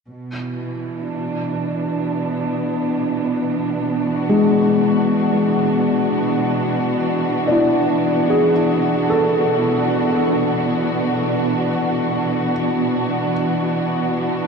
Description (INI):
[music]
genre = ambient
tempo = free time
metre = none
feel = none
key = B dorian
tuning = A4 = 444 Hz
[part]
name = dark studio string section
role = sustained chords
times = 0.1-14.5 s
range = B2 to F#4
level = -18 LUFS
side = right 1 dB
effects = none
[part]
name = felt-muted upright piano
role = arpeggios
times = 4.3-14.5 s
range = G#3 to D5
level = -20 LUFS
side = left 2 dB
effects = diffuse ambient delay
[sound]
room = wet cathedral reverb, RT60 5.0 s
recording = dark, warm production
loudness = -17 LUFS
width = side -5 dB against mid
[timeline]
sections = 0.1-14.5 A section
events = none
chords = 0.1 Bm7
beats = free time